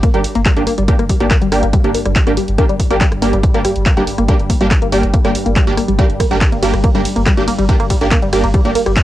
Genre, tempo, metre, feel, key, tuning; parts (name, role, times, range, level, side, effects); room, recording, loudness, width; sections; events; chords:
driving peak-time techno; 141 BPM; 4/4; straight; G minor; A4 = 439 Hz
tight sequenced synth; riff; 0.0-8.9 s; G3 to Bb3; -19 LUFS; left 1 dB; chorus, phaser, sidechain pumping, tape echo
warm sub bass; bass; 0.0-9.0 s; G1; -20 LUFS; equal; tube saturation, sidechain pumping, low-pass filter
deep dark ambient pad; drone; 0.3-9.0 s; G2 to G3; -26 LUFS; left 1 dB; chorus, built-in reverb, sidechain pumping
electronic kick drum; drums; 0.0-9.0 s; -14 LUFS; equal; studio reverb, cassette tape
punchy analog drum machine; drums; 0.0-9.0 s; handclaps, hi-hat, ride cymbal, rim click; -22 LUFS; equal; studio reverb, cassette tape
rave stab; stabs; 0.1-8.7 s; Bb3 to G4; -19 LUFS; right 2 dB; chorus, built-in reverb, sidechain pumping, analog delay
little or no reverb; home recording on cassette; -11 LUFS; side -14 dB against mid
0.0-9.0 A section
0.0 Gm